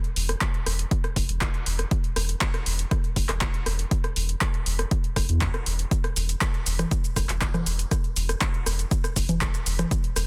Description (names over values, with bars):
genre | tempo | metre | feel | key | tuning
acid house | 120 BPM | 4/4 | straight | unclear | A4 = 440 Hz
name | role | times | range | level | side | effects
punchy analog drum machine | drums | 0.0-10.3 s | congas, handclaps, hi-hat, rim click, shaker | -31 LUFS | equal | overdrive
saturated sub bass | bass | 0.2-10.3 s | E1 to E2 | -29 LUFS | equal | tube saturation, sidechain pumping
electronic kick drum | drums | 0.4-10.0 s | none | -28 LUFS | equal | overdrive
room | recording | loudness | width
little or no reverb | dense, heavily limited modern master | -25 LUFS | mono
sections
0.0-10.3 A section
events
none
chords
none